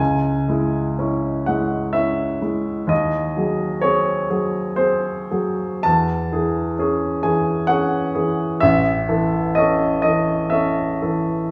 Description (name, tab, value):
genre	classical, romantic nocturne for solo piano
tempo	54-66 BPM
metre	3/4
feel	rubato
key	C# minor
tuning	A4 = 440 Hz
part	clear baby grand piano	solo	0.0-11.5 s	A1 to A5	-20 LUFS	equal	none
room	moderate scoring stage reverb, RT60 1.6 s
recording	studio ambience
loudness	-20 LUFS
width	mono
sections	0.0-11.5 A section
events	none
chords	0.0 C#m; 2.9 G#7/D#; 5.8 C#m/E; 8.6 A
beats	0.99 1.94 | 2.90 3.84 4.79 | 5.85 6.79 7.71 | 8.63 9.56 10.51